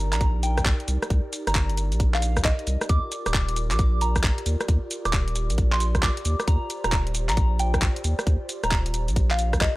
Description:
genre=UK garage, two-step garage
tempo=134 BPM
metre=4/4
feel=swing 64% on 16ths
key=Eb major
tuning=A4 = 440 Hz
part: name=airy breathy pad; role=sustained chords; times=0.0-9.8 s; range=Eb4 to D5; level=-36 LUFS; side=equal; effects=chorus, sidechain pumping
part: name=saturated sub bass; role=bass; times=0.0-9.7 s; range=Eb1 to Eb2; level=-24 LUFS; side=equal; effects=none
part: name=soft synth bell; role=melody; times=0.1-9.8 s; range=Eb5 to D6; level=-30 LUFS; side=equal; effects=chorus, phaser
part: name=garage drum kit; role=drums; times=0.1-9.7 s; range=handclaps, hi-hat, rim click, shaker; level=-28 LUFS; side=equal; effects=none
part: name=electronic kick drum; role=drums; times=0.2-9.7 s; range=none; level=-24 LUFS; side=equal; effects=none
room=little or no reverb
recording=dry, gritty hardware recording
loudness=-21 LUFS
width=side -19 dB against mid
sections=0.0-9.8 A section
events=drum fill 9.6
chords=0.0 Cm9 (rootless); 2.9 Ebmaj9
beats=0.21 0.66 | 1.10 1.55 2.00 2.45 | 2.89 3.34 3.79 4.24 | 4.68 5.13 5.58 6.03 | 6.48 6.92 7.37 7.82 | 8.27 8.71 9.16 9.61

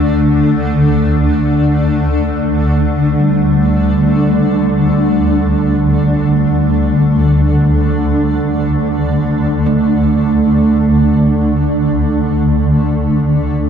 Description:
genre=dark ambient drone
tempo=free time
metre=none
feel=none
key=unclear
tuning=A4 = 440 Hz
part: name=granular cloud pad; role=sustained chords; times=0.0-13.7 s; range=D3 to D4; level=-15 LUFS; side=left 1 dB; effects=built-in reverb
part: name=gamelan-type bronze metallophone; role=arpeggios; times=0.0-13.7 s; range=G3 to D4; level=-18 LUFS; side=right 4 dB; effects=diffuse ambient delay
part: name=swarming drone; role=drone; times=0.0-13.7 s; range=D2 to D3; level=-14 LUFS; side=equal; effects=built-in reverb
room=wet huge ambient reverb, RT60 8.4 s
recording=dark, warm production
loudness=-11 LUFS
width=side -8 dB against mid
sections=0.0-13.7 A section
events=filter sweep on synth drone 0.0-13.7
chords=0.0 D5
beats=free time

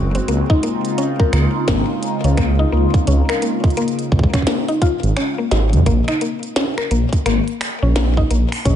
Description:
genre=IDM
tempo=86 BPM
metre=4/4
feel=swing 62% on 16ths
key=unclear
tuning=A4 = 440 Hz
part: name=phased analog pad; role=sustained chords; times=0.0-5.8 s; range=Db3 to Gb4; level=-23 LUFS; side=equal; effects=phaser, chorus
part: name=dark detuned saw bass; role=bass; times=0.0-8.8 s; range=Gb1 to F2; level=-16 LUFS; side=equal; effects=tube saturation
part: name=mallet-like synth pluck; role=arpeggios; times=0.1-8.8 s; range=Bb3 to Bb4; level=-21 LUFS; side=left 3 dB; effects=chorus, ping-pong delay
part: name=glitchy drum kit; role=drums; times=0.1-8.8 s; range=finger snaps, hi-hat, snare drum, toms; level=-23 LUFS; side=right 1 dB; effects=ping-pong delay
part: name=electronic kick drum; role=drums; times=0.5-8.8 s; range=none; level=-18 LUFS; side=right 1 dB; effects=none
room=light reverb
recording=nothing above 10.8 kHz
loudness=-15 LUFS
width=side -10 dB against mid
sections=0.0-5.9 A section; 5.9-8.8 B section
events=kick drops out 5.2-5.9; drum fill 5.5-5.9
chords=0.3 Dbmaj7; 5.9 N.C.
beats=| 0.28 0.98 1.68 2.38 | 3.07 3.77 4.47 5.17 | 5.86 6.56 7.26 7.96 | 8.65

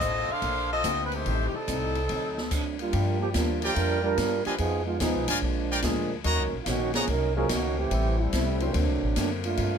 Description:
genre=jazz, big band swing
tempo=144 BPM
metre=4/4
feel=swing 67% on 8ths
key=unclear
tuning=A4 = 439 Hz
part: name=clear saxophone section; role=melody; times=0.0-2.8 s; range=G3 to F5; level=-28 LUFS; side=equal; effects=plate reverb
part: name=picked steel-string acoustic guitar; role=accompaniment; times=0.0-9.8 s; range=G2 to C5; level=-36 LUFS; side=left 5 dB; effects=none
part: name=upright bass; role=bass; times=0.0-9.8 s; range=Ab1 to G2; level=-29 LUFS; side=equal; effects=none
part: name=open jazz drum kit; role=drums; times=0.0-9.7 s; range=crash cymbal, hi-hat, kick drum, ride cymbal, snare drum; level=-33 LUFS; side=left 2 dB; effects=none
part: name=clear concert grand piano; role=accompaniment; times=0.8-8.7 s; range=D3 to C5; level=-33 LUFS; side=equal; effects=none
part: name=warm trombone section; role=second line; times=2.5-9.8 s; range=Eb3 to Bb4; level=-28 LUFS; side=right 5 dB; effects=none
part: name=brilliant trumpet section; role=stabs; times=3.6-7.0 s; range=F4 to Bb5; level=-28 LUFS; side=left 1 dB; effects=none
room=light reverb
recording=close, detailed microphones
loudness=-24 LUFS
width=side -7 dB against mid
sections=0.0-2.9 A section; 2.9-9.8 B section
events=trombone section solo 2.9-9.8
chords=0.0 Bbmaj9; 1.3 Am7b5; 2.1 D7b9; 2.9 Gm7; 4.6 Fm7b5; 5.4 Bb7; 6.3 Ebm7; 7.9 Am7; 8.7 D7b13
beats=0.01 0.42 0.84 | 1.26 1.67 2.09 2.51 | 2.92 3.34 3.76 4.17 | 4.59 5.00 5.42 5.84 | 6.25 6.67 7.08 7.50 | 7.92 8.33 8.75 9.16 | 9.58

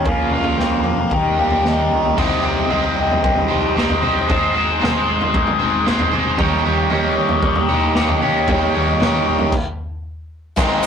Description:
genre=indie rock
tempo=114 BPM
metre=4/4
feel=straight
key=unclear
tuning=A4 = 443 Hz
part: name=biting overdriven guitar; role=riff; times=0.0-10.9 s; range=Ab2 to Eb5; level=-18 LUFS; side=left 2 dB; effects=phaser
part: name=crunchy overdriven guitar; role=riff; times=0.0-10.9 s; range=Ab2 to Db5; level=-21 LUFS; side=right 4 dB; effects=none
part: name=growling picked electric bass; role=bass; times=0.0-10.8 s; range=G1 to Ab2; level=-26 LUFS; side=equal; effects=overdrive
part: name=raw garage drum kit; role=drums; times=0.0-10.9 s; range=crash cymbal, kick drum, ride cymbal, snare drum, toms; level=-22 LUFS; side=equal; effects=none
part: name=egg shaker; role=percussion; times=10.6-10.9 s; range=none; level=-30 LUFS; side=left 6 dB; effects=none
room=moderate small room reverb, RT60 0.6 s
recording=rough rehearsal-room recording, tube saturation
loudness=-15 LUFS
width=side -7 dB against mid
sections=0.0-2.2 A section; 2.2-10.6 B section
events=drum fill 1.9; stop 9.5-10.6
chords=0.1 Bbmadd9/Db; 1.1 Eb; 2.2 Cm; 4.3 Ab; 6.4 Eb7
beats=| 0.07 0.60 1.13 1.66 | 2.19 2.71 3.24 3.77 | 4.29 4.82 5.34 5.87 | 6.39 6.92 7.44 7.96 | 8.49 9.01 9.54 10.06 | 10.59

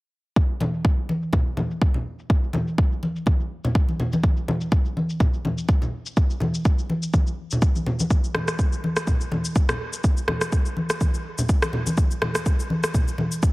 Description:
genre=house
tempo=124 BPM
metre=4/4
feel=swing 56% on 16ths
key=none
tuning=none
part: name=electronic cabasa and rim click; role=drums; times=0.4-13.5 s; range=none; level=-28 LUFS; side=equal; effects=low-pass filter on perc, low-pass filter on snare
part: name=electronic kick drum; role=drums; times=0.4-13.5 s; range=none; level=-20 LUFS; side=equal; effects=overdrive
part: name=congas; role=percussion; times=0.6-13.3 s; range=none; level=-26 LUFS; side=equal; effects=none
room=little or no reverb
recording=heavily compressed radio sound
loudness=-20 LUFS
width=side -21 dB against mid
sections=0.4-13.5 A section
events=filter sweep on drum 0.4-13.5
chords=none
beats=| 0.36 0.85 1.33 1.82 | 2.30 2.78 3.27 3.75 | 4.24 4.72 5.20 5.69 | 6.17 6.66 7.14 7.62 | 8.11 8.59 9.07 9.56 | 10.04 10.53 11.01 11.49 | 11.98 12.46 12.95 13.43

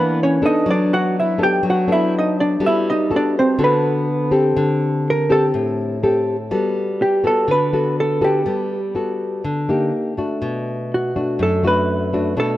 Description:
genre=bossa nova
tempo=123 BPM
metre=4/4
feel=straight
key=G major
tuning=A4 = 440 Hz
part: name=hollow-body jazz guitar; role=melody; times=0.0-12.6 s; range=B3 to G5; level=-18 LUFS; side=right 1 dB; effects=none
part: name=nylon-string guitar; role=accompaniment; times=0.0-12.6 s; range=F#2 to A4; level=-18 LUFS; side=left 1 dB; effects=none
room=moderate plate reverb, RT60 2.9 s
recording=nothing above 10.6 kHz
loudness=-16 LUFS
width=side -14 dB against mid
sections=0.0-6.5 A section; 6.5-12.6 B section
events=hollow-body jazz guitar solo 0.0-6.5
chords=0.0 F#7b13 (rootless); 0.7 Bm7/F#; 2.6 Gmaj9; 4.6 D7sus4; 6.5 Gmaj9; 9.9 Ebmaj7#11; 10.4 Bm7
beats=0.17 | 0.66 1.15 1.63 2.12 | 2.61 3.10 3.58 4.07 | 4.56 5.04 5.53 6.02 | 6.51 7.00 7.49 7.97 | 8.46 8.95 9.44 9.93 | 10.42 10.91 11.39 11.88 | 12.37

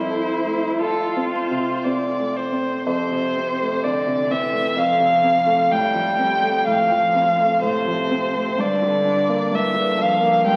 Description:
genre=classical, slow romantic movement for piano trio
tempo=56-66 BPM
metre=3/4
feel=rubato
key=F major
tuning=A4 = 437 Hz
part: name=rich violin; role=melody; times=0.0-10.6 s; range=A4 to G5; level=-22 LUFS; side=equal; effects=none
part: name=rich cello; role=second line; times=0.0-10.6 s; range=C3 to F4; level=-30 LUFS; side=equal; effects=none
part: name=warm grand piano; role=accompaniment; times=0.0-10.6 s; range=F2 to A4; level=-26 LUFS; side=equal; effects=none
room=wet scoring stage reverb, RT60 1.9 s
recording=very old 78 rpm record, vinyl crackle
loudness=-20 LUFS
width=mono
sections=0.0-2.9 A section; 2.9-10.6 B section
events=none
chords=0.0 F; 5.7 F/A; 8.6 Gm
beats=0.81 1.85 | 2.88 3.85 4.78 | 5.71 6.67 7.62 | 8.59 9.53 10.46

